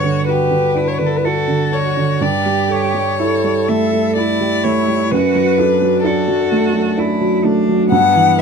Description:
classical, slow romantic movement for piano trio; 63 BPM; 3/4; rubato; D major; A4 = 441 Hz
rich violin; melody; 0.0-8.4 s; A4 to F#5; -17 LUFS; left 5 dB
clear cello; second line; 0.0-8.4 s; B3 to A4; -22 LUFS; right 4 dB
warm grand piano; accompaniment; 0.0-8.4 s; F#2 to B4; -16 LUFS; right 2 dB
moderate studio reverb, RT60 0.8 s; dark, warm production; -13 LUFS; side -6 dB against mid
0.0-8.4 A section
0.0 Gmaj7; 2.2 A7/G; 5.1 D/F#

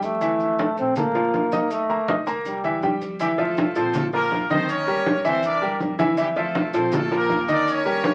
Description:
latin, salsa; 161 BPM; 4/4; straight; F major; A4 = 440 Hz
bright trombone; melody; 0.0-3.0 s; G3 to C4; -26 LUFS; equal
bright baby grand piano; accompaniment; 0.0-8.1 s; Eb3 to Eb6; -25 LUFS; equal
upright bass; bass; 0.0-8.1 s; Bb1 to F2; -41 LUFS; equal
congas; percussion; 0.0-8.1 s; -29 LUFS; equal
maracas; percussion; 0.0-8.1 s; -46 LUFS; equal
brilliant horn section; melody; 3.2-8.1 s; G3 to D5; -27 LUFS; equal
wet small room reverb, RT60 0.5 s; very old 78 rpm record, vinyl crackle; -22 LUFS; mono
0.0-3.2 A section; 3.2-8.1 B section
0.2 Fmaj7; 1.0 Bb5; 1.7 Eb5; 2.5 C7; 3.2 Fmaj7; 3.9 Bb5; 4.7 Eb7; 5.4 C7; 6.2 Fmaj7; 6.9 Bb5

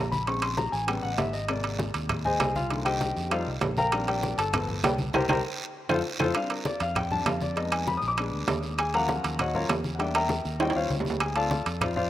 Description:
Afro-Cuban jazz; 198 BPM; 4/4; straight; A4 = 436 Hz
warm baby grand piano; accompaniment; 0.0-12.1 s; C3 to Eb6; -28 LUFS; left 2 dB
fingered electric bass; bass; 0.0-12.1 s; G1 to F2; -33 LUFS; equal
bongos; percussion; 0.1-12.0 s; -41 LUFS; left 6 dB
congas; percussion; 0.1-12.1 s; -34 LUFS; left 1 dB
guiro; percussion; 0.1-12.1 s; -41 LUFS; right 5 dB
timbales; percussion; 0.3-12.0 s; -30 LUFS; right 4 dB
claves; percussion; 0.4-12.0 s; -40 LUFS; left 4 dB
light reverb; rough home demo mix; -25 LUFS; side -13 dB against mid
0.0-6.4 A section; 6.4-12.1 A section
grand piano solo 0.0-12.1; band accent 5.1-6.4; drum fill 5.9-6.4, 10.6-11.2
0.3 Bbm9; 0.9 A9; 1.5 Abadd9; 2.7 Cm7; 3.3 F9; 3.9 Bb6; 4.5 G7; 5.1 C5; 5.7 F; 6.4 F69; 7.6 Fm7b5; 8.2 Bb7b9; 8.8 Ebm9; 10.0 Em7b5; 10.6 Eb13; 11.2 Dm7

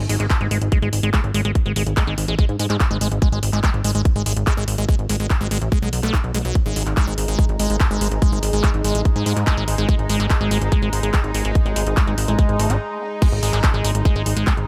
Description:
psychedelic trance; 144 BPM; 4/4; straight; A4 = 439 Hz
plucky analog bass; bass; 0.0-14.6 s; G#1 to G#2; -24 LUFS; equal
liquid acid bass; riff; 0.1-14.5 s; F#3 to D#4; -28 LUFS; equal; phaser, sidechain pumping, tape echo
techno drum kit; drums; 0.1-14.7 s; crash cymbal, handclaps, hi-hat; -29 LUFS; equal; overdrive, small room ambience
electronic kick drum; drums; 0.3-14.6 s; -19 LUFS; equal; small room ambience
bubbling stepped-filter texture; sustained chords; 6.6-14.7 s; G#3 to D#4; -30 LUFS; equal; chorus, built-in reverb, sidechain pumping
granular cloud pad; texture; 14.3-14.7 s; D#4 to G#4; -40 LUFS; equal
little or no reverb; -19 LUFS; mono
0.0-13.2 A section; 13.2-14.7 B section
break 12.8-13.2; drop 13.2-14.7
0.0 G#5

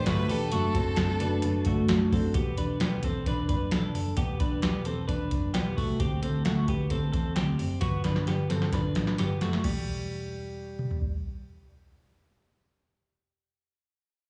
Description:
jangly indie pop; 131 BPM; 4/4; straight; E minor; A4 = 440 Hz
clear violin; melody; 0.0-1.9 s; A4 to B4; -36 LUFS; equal; plate reverb, slapback echo, tape echo
fingerpicked steel-string acoustic guitar; accompaniment; 0.0-2.4 s; F#3 to G4; -35 LUFS; equal; plate reverb, slapback echo
twelve-string electric guitar; arpeggios; 0.0-11.0 s; G3 to B4; -34 LUFS; equal; plate reverb, slapback echo, tape echo
vintage muted picked electric bass; bass; 0.0-13.5 s; E1 to E2; -33 LUFS; equal
soft vintage rhythm box; drums; 0.1-11.1 s; crash cymbal, hi-hat, kick drum, snare drum, toms; -32 LUFS; equal; slapback echo
light reverb; live gig heard through the venue's PA, club reverb, small room ambience; -28 LUFS; mono
0.0-2.3 A section; 2.3-9.6 B section; 9.6-13.3 C section
drum fill 7.8-9.6
0.0 Gsus2; 0.5 D/F#; 2.3 Em7; 6.0 D7sus4; 7.8 Gmaj7; 9.6 Em

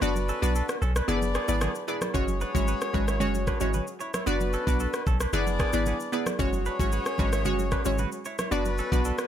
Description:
afrobeats; 113 BPM; 4/4; straight; A4 = 438 Hz
clear horn section; second line; 0.0-9.3 s; B3 to D5; -34 LUFS; left 2 dB
glassy wavetable pluck; accompaniment; 0.0-9.1 s; G#3 to D5; -30 LUFS; equal; chorus
direct-recorded clean electric guitar; riff; 0.0-9.2 s; B3 to C#5; -36 LUFS; right 4 dB; wide subtle chorus, tape echo
punchy sub bass; bass; 0.0-9.1 s; F#1 to B1; -28 LUFS; equal
afro-pop drum kit; drums; 0.0-9.3 s; kick drum, rim click, shaker; -31 LUFS; equal
congas; percussion; 0.0-9.0 s; -39 LUFS; right 2 dB
digital ambience; -24 LUFS; side -10 dB against mid
0.0-9.3 A section
break 0.0-2.1
0.0 Bm/F#; 1.1 E7/F#; 2.1 F#sus2; 4.3 Bm/F#; 5.3 E7/F#; 6.4 F#sus2; 8.5 Bm/F#

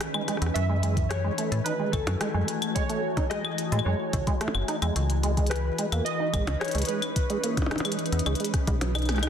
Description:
IDM; 109 BPM; 4/4; straight; A4 = 438 Hz
glassy FM pad; sustained chords; 0.0-9.3 s; D#3 to G#5; -32 LUFS; left 2 dB; ensemble chorus, built-in reverb
glitchy drum kit; drums; 0.0-9.3 s; claves, hi-hat, percussion blips, rim click; -32 LUFS; left 2 dB; soft clipping on snare, studio reverb
deep acid bass; arpeggios; 0.1-9.3 s; F#3 to D#4; -32 LUFS; right 3 dB; lush chorus, dub echo
metallic FM bass; bass; 0.4-9.3 s; F#1 to A2; -26 LUFS; equal
warbly lo-fi synth keys; melody; 0.5-8.5 s; A4 to E5; -33 LUFS; right 2 dB; chorus, dub echo
electronic kick drum; drums; 1.0-8.8 s; -27 LUFS; equal; studio reverb
light reverb, digital ambience; dense, heavily limited modern master; -24 LUFS; side -8 dB against mid
0.0-9.3 A section
kick drops out 8.8-9.3; drum fill 9.0-9.3; band accent 9.1
0.0 C#m9; 0.6 F#m9; 5.0 C#m9

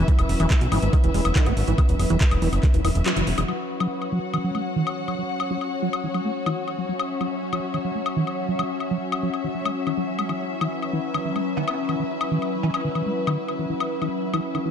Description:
psychedelic trance; 141 BPM; 4/4; straight; A4 = 437 Hz
evolving wavetable pad; sustained chords; 0.0-14.7 s; F#3 to C#4; -29 LUFS; left 2 dB; chorus, built-in reverb, sidechain pumping
liquid acid bass; riff; 0.0-14.7 s; D#3 to C#4; -28 LUFS; moving between left 3 dB and right 5 dB; phaser, auto-pan, sidechain pumping, dub echo
fat analog bass; bass; 0.0-3.4 s; E1 to B1; -22 LUFS; equal; tube saturation
dark studio string section; texture; 0.0-14.7 s; E4 to F#5; -30 LUFS; left 2 dB; sidechain pumping
electronic kick drum; drums; 0.1-2.7 s; -19 LUFS; equal; overdrive
garage drum kit; drums; 0.1-14.6 s; handclaps, hi-hat, woodblock; -30 LUFS; left 4 dB; overdrive
metallic wobble bass; second line; 1.4-1.5, 11.6-12.8 s; B3 to C#4; -37 LUFS; right 4 dB; ensemble chorus, sidechain pumping, high-pass filter, digital delay
light reverb; dark, warm production; -21 LUFS; side -8 dB against mid
0.0-3.5 A section; 3.5-14.7 B section
kick drops out 3.1-3.5; band accent 3.1
0.0 E5; 3.5 F#5; 10.3 E5

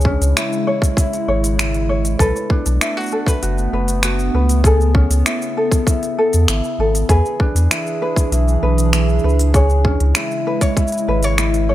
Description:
folktronica; 98 BPM; 4/4; straight; A4 = 441 Hz
warbly tape-like pad; sustained chords; 0.0-11.7 s; C#3 to G#4; -23 LUFS; right 1 dB; chorus, built-in reverb, phaser
ukulele; arpeggios; 0.0-11.7 s; C#4 to C#5; -21 LUFS; left 1 dB; tape echo
warm sub bass; bass; 0.0-11.7 s; F#1 to E2; -16 LUFS; equal
organic electronic drum kit; drums; 0.0-11.7 s; finger snaps, hi-hat, shaker; -22 LUFS; equal; overdrive
electronic kick drum; drums; 0.1-10.9 s; -16 LUFS; equal; overdrive
little or no reverb; -14 LUFS; side -14 dB against mid
0.0-11.7 A section
0.0 C#m; 2.2 Bm7; 4.6 Amaj7/C#; 7.1 E7; 9.5 C#m

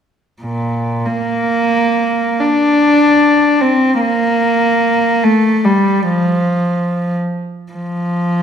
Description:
classical, free, expressive piece for unaccompanied cello; 41-79 BPM; 4/4; rubato; Bb major; A4 = 440 Hz
rich cello; solo; 0.4-8.4 s; Bb2 to D4; -12 LUFS; equal
wet recital hall reverb, RT60 1.3 s; -12 LUFS; side -8 dB against mid
0.4-7.7 A section

